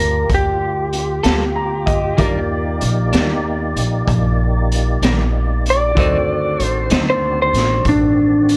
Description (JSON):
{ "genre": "slow blues", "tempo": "64 BPM (dotted quarters)", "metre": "12/8", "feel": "straight", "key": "unclear", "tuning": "A4 = 440 Hz", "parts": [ { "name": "electric slide guitar", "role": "melody", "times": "0.0-8.6 s", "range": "D4 to D5", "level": "-20 LUFS", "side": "equal", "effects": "none" }, { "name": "bright upright piano", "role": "accompaniment", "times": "0.0-8.6 s", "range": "D4 to Bb5", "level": "-29 LUFS", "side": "equal", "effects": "none" }, { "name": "tonewheel organ", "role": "sustained chords", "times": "0.0-8.6 s", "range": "Eb3 to D5", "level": "-27 LUFS", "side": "equal", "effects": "slow rotary speaker, chorus vibrato" }, { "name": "upright bass", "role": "bass", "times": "0.0-8.6 s", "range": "A1 to Eb2", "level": "-22 LUFS", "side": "equal", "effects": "none" }, { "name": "raw garage drum kit", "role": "drums", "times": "0.3-8.6 s", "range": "hi-hat, kick drum, snare drum", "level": "-24 LUFS", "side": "equal", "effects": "none" }, { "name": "clean electric guitar", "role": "accompaniment", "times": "1.2-7.1 s", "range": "D3 to A4", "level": "-22 LUFS", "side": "equal", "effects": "harmonic tremolo" } ], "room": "light reverb", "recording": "worn, warbling old tape, cassette tape, warbly pitch drift", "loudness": "-17 LUFS", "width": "mono", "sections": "0.0-8.6 A section", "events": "electric slide guitar solo 0.0-8.6; upright piano fill 1.2-2.2", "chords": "0.0 Gm9; 2.2 Ebmaj7; 6.0 D7b9" }